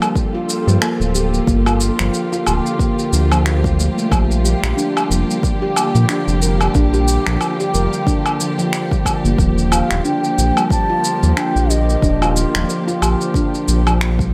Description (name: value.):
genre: organic downtempo.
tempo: 91 BPM.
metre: 4/4.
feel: swing 57% on 16ths.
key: unclear.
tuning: A4 = 440 Hz.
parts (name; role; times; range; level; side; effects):
dark studio string section; sustained chords; 0.0-14.3 s; D3 to A4; -26 LUFS; equal; sidechain pumping.
handpan; arpeggios; 0.0-14.3 s; F3 to Bb4; -22 LUFS; equal; tape echo.
electronic woodblock, shaker and finger snaps; drums; 0.0-14.3 s; none; -24 LUFS; equal; none.
electronic kick drum; drums; 0.2-14.3 s; none; -20 LUFS; equal; none.
round analog bass; bass; 0.7-14.3 s; D1 to Bb2; -19 LUFS; equal; none.
mellow bansuri; melody; 9.7-12.7 s; Eb5 to A5; -24 LUFS; equal; tape echo.
room: light reverb, small room ambience.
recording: none.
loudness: -17 LUFS.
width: mono.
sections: 0.0-14.3 A section.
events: none.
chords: 0.0 Gm9; 4.1 Bb6; 9.4 Ebmaj9.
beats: 0.16 0.82 | 1.48 2.14 2.80 3.46 | 4.12 4.78 5.43 6.09 | 6.75 7.41 8.07 8.73 | 9.39 10.05 10.71 11.37 | 12.03 12.69 13.35 14.01.